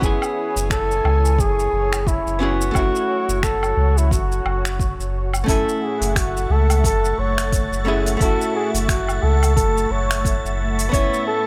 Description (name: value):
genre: sunset chillout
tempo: 88 BPM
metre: 4/4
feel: swing 57% on 16ths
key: F# minor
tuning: A4 = 440 Hz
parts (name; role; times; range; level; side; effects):
- trumpet with bucket mute; melody; 0.0-11.5 s; E4 to C#5; -25 LUFS; equal; delay
- archtop guitar, miked and amplified; accompaniment; 0.0-11.5 s; A3 to G#5; -28 LUFS; equal; delay
- lush unison pad; sustained chords; 0.0-11.5 s; A3 to C#6; -32 LUFS; equal; chorus, phaser
- warm sub bass; bass; 0.0-11.1 s; F#1 to C#2; -23 LUFS; equal; none
- deep house drum kit; drums; 0.0-11.2 s; finger snaps, hi-hat, shaker, woodblock; -29 LUFS; equal; none
- electronic kick drum; drums; 0.0-11.1 s; none; -25 LUFS; equal; none
- wind-like tuned noise texture; texture; 6.1-11.5 s; A6; -36 LUFS; equal; built-in reverb
room: light reverb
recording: none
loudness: -20 LUFS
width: mono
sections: 0.0-5.5 A section; 5.5-11.5 B section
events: none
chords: 0.0 Amaj7/F#; 2.8 F#m7; 10.9 A/F#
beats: | 0.02 0.70 1.39 2.07 | 2.75 3.43 4.11 4.80 | 5.48 6.16 6.84 7.52 | 8.21 8.89 9.57 10.25 | 10.93